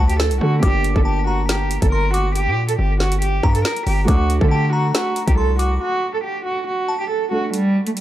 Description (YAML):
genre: hip hop, drill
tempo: 139 BPM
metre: 4/4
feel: half-time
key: unclear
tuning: A4 = 440 Hz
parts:
  - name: warm cello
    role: melody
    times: 0.0-8.0 s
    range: G3 to Bb4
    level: -21 LUFS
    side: right 2 dB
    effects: low-pass filter
  - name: glassy synth bell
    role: second line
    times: 0.0-7.1 s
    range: A5 to D6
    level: -28 LUFS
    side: left 4 dB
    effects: chorus, tremolo, tape echo
  - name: dark concert grand piano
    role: accompaniment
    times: 0.0-7.6 s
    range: A3 to A4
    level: -28 LUFS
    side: right 3 dB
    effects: low-pass filter
  - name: hard-hitting 808-style bass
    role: bass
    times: 0.0-5.8 s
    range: G1 to D3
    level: -19 LUFS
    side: equal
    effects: none
  - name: drill drum kit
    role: drums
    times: 0.1-8.0 s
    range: hi-hat, kick drum, rim click, snare drum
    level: -19 LUFS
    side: equal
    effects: none
room: digital ambience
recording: dark, warm production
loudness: -16 LUFS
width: side -13 dB against mid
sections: 0.0-7.5 A section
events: break 5.8-7.5; kick muted 7.5-8.0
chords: 0.0 D; 0.6 Gm; 4.1 D